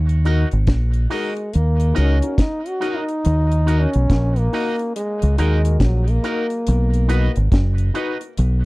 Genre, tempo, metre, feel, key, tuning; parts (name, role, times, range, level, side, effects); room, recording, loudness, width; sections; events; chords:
roots reggae; 70 BPM; 4/4; swing 62% on 16ths; Eb minor; A4 = 440 Hz
deep dub fingered electric bass; bass; 0.0-8.7 s; F#1 to Eb2; -16 LUFS; equal
deep reggae drum kit; drums; 0.1-8.6 s; hi-hat, kick drum, snare drum; -18 LUFS; equal
electric guitar with an envelope filter; accompaniment; 0.2-8.2 s; Eb4 to Eb5; -30 LUFS; right 5 dB; tape echo
dark concert grand piano; stabs; 0.2-8.3 s; Eb4 to B4; -26 LUFS; left 6 dB
warm trombone; melody; 1.1-7.4 s; Gb3 to Gb4; -24 LUFS; equal; tape echo
little or no reverb; dry, close 1970s-style studio recording; -16 LUFS; side -22 dB against mid
0.0-8.7 A section
trombone solo 0.0-8.7
0.0 Ebm; 6.7 B